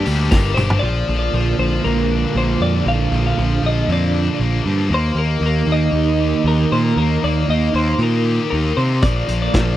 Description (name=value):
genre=indie rock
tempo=117 BPM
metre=4/4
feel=straight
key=unclear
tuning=A4 = 439 Hz
part: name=semi-hollow electric guitar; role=melody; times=0.0-9.8 s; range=G4 to F5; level=-24 LUFS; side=left 3 dB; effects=tremolo, slapback echo
part: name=growling trumpet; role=second line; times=0.0-0.5 s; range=G3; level=-35 LUFS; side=right 6 dB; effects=none
part: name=hollow soft pad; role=sustained chords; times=0.0-0.8, 9.0-9.8 s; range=Bb3 to D6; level=-36 LUFS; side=equal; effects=none
part: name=crunchy overdriven guitar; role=riff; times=0.0-9.8 s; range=Bb2 to A4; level=-22 LUFS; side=right 6 dB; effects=ensemble chorus, slapback echo
part: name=high-gain distorted guitar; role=riff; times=0.0-9.8 s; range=F3 to G4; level=-25 LUFS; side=left 7 dB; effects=distortion
part: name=fuzz picked electric bass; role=bass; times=0.0-9.7 s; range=G1 to C3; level=-18 LUFS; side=equal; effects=overdrive
part: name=vintage drum kit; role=drums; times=0.1-0.8, 9.0-9.7 s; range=hi-hat, kick drum, snare drum, toms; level=-18 LUFS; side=equal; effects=none
part: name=tambourine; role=percussion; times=0.1-0.7 s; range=none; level=-39 LUFS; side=right 6 dB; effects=none
room=little or no reverb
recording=dry, close 1970s-style studio recording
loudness=-15 LUFS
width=side -13 dB against mid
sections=0.8-9.8 A section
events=drum fill 0.3-0.8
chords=0.0 Gmadd9; 0.8 Bb; 4.9 Eb; 9.0 Bb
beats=0.31 | 0.82 1.34 1.85 2.36 | 2.88 3.39 3.90 4.41 | 4.93 5.44 5.95 6.46 | 6.98 7.49 8.00 8.52 | 9.03 9.54